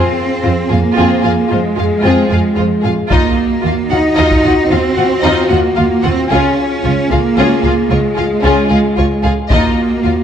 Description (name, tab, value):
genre	cinematic, epic orchestral film score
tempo	75 BPM (dotted quarters)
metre	12/8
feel	straight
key	Eb dorian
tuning	A4 = 442 Hz
part	warm symphonic violin section	melody	0.0-10.1 s	Ab4 to Gb5	-21 LUFS	left 4 dB	none
part	warm symphonic violin section	second line	0.0-10.1 s	C4 to Ab4	-20 LUFS	left 4 dB	none
part	rich symphonic viola section	accompaniment	0.0-10.1 s	F4	-20 LUFS	right 2 dB	none
part	dark French horn section	sustained chords	0.0-10.2 s	F4 to Ab4	-19 LUFS	left 3 dB	none
part	rich symphonic cello section	bass	0.0-10.2 s	Ab3 to Eb4	-15 LUFS	right 2 dB	none
part	rich symphonic double bass section	bass	0.4-10.1 s	Db2 to F2	-17 LUFS	right 2 dB	none
part	taiko ensemble	drums	3.1-4.6, 9.5-10.2 s	none	-17 LUFS	equal	none
room	moderate scoring stage reverb, RT60 2.1 s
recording	dark, warm production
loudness	-10 LUFS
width	side -8 dB against mid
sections	0.0-10.2 A section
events	none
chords	0.0 Fm; 3.1 Ebmadd9; 6.3 Db; 9.5 Ebmadd9